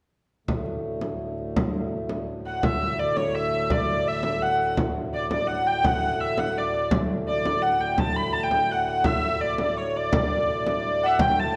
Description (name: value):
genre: medieval dance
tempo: 168 BPM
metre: 3/4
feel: straight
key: D major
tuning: A4 = 444 Hz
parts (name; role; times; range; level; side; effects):
- pedal harmonium; drone; 0.5-11.6 s; D2 to A2; -33 LUFS; equal; none
- frame drum; percussion; 0.5-11.5 s; none; -30 LUFS; equal; none
- rich hurdy-gurdy; melody; 2.5-11.6 s; C#5 to B5; -26 LUFS; equal; none
room: wet recital hall reverb, RT60 1.5 s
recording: dark, warm production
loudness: -25 LUFS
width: mono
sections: 0.5-2.6 A section; 2.6-11.2 B section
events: none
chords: none